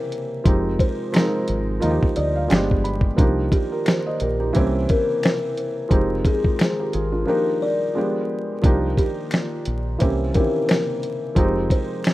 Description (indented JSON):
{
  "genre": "lo-fi hip hop",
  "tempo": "88 BPM",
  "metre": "4/4",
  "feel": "swing 57% on 16ths",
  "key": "C minor",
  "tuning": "A4 = 440 Hz",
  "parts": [
    { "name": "buzzing kalimba", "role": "melody", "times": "0.0-12.1 s", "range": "G4 to Eb5", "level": "-26 LUFS", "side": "left 2 dB", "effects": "tape echo" },
    { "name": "felt-muted upright piano", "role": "accompaniment", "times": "0.0-12.1 s", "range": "Eb3 to B5", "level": "-24 LUFS", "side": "right 2 dB", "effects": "cassette tape" },
    { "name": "dark analog pad", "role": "sustained chords", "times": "0.0-12.1 s", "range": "C3 to D5", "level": "-33 LUFS", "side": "left 1 dB", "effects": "chorus" },
    { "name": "dusty soul sampler-style drum kit", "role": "drums", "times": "0.1-12.1 s", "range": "finger snaps, hi-hat, kick drum, snare drum", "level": "-19 LUFS", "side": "equal", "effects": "none" },
    { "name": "deep dub fingered electric bass", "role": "bass", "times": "0.5-11.7 s", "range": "F1 to Eb2", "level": "-24 LUFS", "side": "equal", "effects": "none" },
    { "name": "finger snaps", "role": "percussion", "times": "1.1-12.1 s", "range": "none", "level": "-34 LUFS", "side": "left 3 dB", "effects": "none" }
  ],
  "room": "little or no reverb",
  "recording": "rough home demo mix, vinyl crackle",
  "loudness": "-18 LUFS",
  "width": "side -17 dB against mid",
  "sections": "0.0-12.1 A section",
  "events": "drums muted 7.3-8.6",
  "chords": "0.5 Fm7; 1.8 Ebmaj9; 2.5 G7b9; 3.2 Cm11; 4.5 C7b9; 5.9 Fm7; 7.3 Ebmaj9; 8.0 G7b9; 8.6 Cm11; 10.0 C7b9; 11.4 Fm7"
}